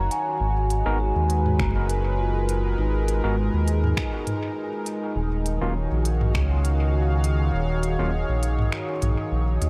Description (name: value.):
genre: ambient dub.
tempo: 101 BPM.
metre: 4/4.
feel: swing 54% on 16ths.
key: G# dorian.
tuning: A4 = 442 Hz.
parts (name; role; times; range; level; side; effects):
warm analog pad; sustained chords; 0.0-9.7 s; D#3 to E#5; -31 LUFS; equal; chorus.
vibraphone with soft mallets; arpeggios; 0.0-5.7 s; D#4 to A#5; -33 LUFS; equal; dub echo.
round analog bass; bass; 0.0-9.7 s; D#1 to D#2; -25 LUFS; equal; tube saturation.
organic electronic drum kit; drums; 0.1-9.7 s; finger snaps, hi-hat, toms; -32 LUFS; equal; dub echo.
wind-like tuned noise texture; texture; 1.7-9.7 s; G#4; -41 LUFS; equal; built-in reverb.
overdriven tine electric piano; stabs; 0.9-8.1 s; F#3 to A#4; -38 LUFS; equal; none.
electronic kick drum; drums; 1.6-6.5 s; none; -32 LUFS; equal; none.
room: light reverb.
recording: vinyl crackle.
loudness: -24 LUFS.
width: mono.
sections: 0.0-9.7 A section.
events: kick drops out 8.7-9.7.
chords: 0.4 G#m7; 5.2 D#m7.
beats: | 0.41 1.00 1.59 2.19 | 2.78 3.38 3.97 4.57 | 5.16 5.75 6.35 6.94 | 7.54 8.13 8.72 9.32.